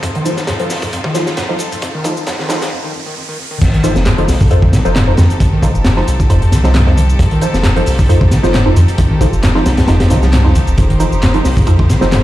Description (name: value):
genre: breakbeat, breaks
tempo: 134 BPM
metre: 4/4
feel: swing 54% on 16ths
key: unclear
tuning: A4 = 440 Hz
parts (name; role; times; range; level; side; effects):
- clear studio string section; sustained chords; 0.0-12.2 s; F3 to C5; -23 LUFS; left 1 dB; sidechain pumping
- overdriven acid bass; riff; 0.0-12.2 s; F2 to F3; -15 LUFS; equal; distortion, wide subtle chorus
- crunchy breakbeat drum kit; drums; 0.0-12.2 s; crash cymbal, hi-hat, kick drum, snare drum; -16 LUFS; equal; high-pass filter on kick, high-pass filter on hats, high-pass filter on cymbals, high-pass filter on snare, high-pass filter on room
- electronic shaker and handclaps; drums; 0.0-12.2 s; none; -26 LUFS; left 1 dB; none
- riser and impact; sound effects; 0.0-5.4 s; none; -25 LUFS; equal; none
- filtered dub chord stab; stabs; 0.3-12.1 s; Eb4 to C5; -20 LUFS; right 1 dB; phaser, ping-pong delay
- saturated sub bass; bass; 0.4-12.2 s; F1 to F2; -13 LUFS; equal; high-pass filter
room: light reverb, small room ambience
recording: played on a big sound system in a bare room, stone room reverb, high-pass filter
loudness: -10 LUFS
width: side -15 dB against mid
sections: 0.0-3.6 A section; 3.6-12.2 B section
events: build-up 0.0-3.6; riser 0.0-3.6; filter sweep on acid bass 0.0-3.6; filter sweep on synth stab 0.0-3.6; break 2.7-3.6; drop 3.6-12.2; impact 3.6-5.4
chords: 0.0 F7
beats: | 0.03 0.48 0.93 1.38 | 1.82 2.27 2.72 3.17 | 3.61 4.06 4.51 4.96 | 5.41 5.85 6.30 6.75 | 7.20 7.64 8.09 8.54 | 8.99 9.44 9.88 10.33 | 10.78 11.23 11.67 12.12